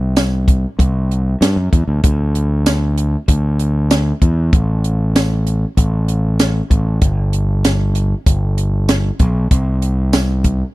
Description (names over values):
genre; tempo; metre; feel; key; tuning
indie rock; 96 BPM; 4/4; straight; unclear; A4 = 437 Hz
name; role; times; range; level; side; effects
growling fingered electric bass; bass; 0.0-10.6 s; G1 to G2; -15 LUFS; equal; overdrive
compact cocktail drum kit; drums; 0.2-10.6 s; hi-hat, kick drum, snare drum, tambourine; -15 LUFS; equal; none
room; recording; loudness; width
little or no reverb; dry, close 1970s-style studio recording; -13 LUFS; side -19 dB against mid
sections
0.0-10.7 A section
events
none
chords
none